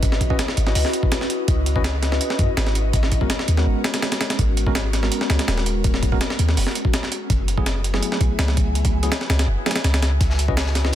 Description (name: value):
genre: drum and bass, jungle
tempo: 165 BPM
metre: 4/4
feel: straight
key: C# minor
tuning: A4 = 440 Hz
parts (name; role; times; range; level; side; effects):
- ethereal airy pad; sustained chords; 0.0-10.9 s; G#3 to G#5; -29 LUFS; left 3 dB; ensemble chorus, built-in reverb, phaser
- tine electric piano; stabs; 0.0-10.9 s; F#3 to D#5; -28 LUFS; right 1 dB; medium stereo tremolo, dub echo
- warm 808-style bass; bass; 0.0-10.9 s; D#1 to F#2; -21 LUFS; equal; none
- breakbeat sampler-style drum kit; drums; 0.0-10.9 s; hi-hat, kick drum, snare drum; -21 LUFS; equal; small room ambience
- crunchy breakbeat drum kit; drums; 10.2-10.9 s; hi-hat, snare drum; -31 LUFS; left 5 dB; high-pass filter on hats, small room ambience, high-pass filter on snare, high-pass filter on room
room: small room ambience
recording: dense, heavily limited modern master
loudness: -18 LUFS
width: side -12 dB against mid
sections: 0.0-10.9 A section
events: none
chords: 0.0 C#m11; 2.9 G#m11; 6.6 F#m11; 10.2 C#m11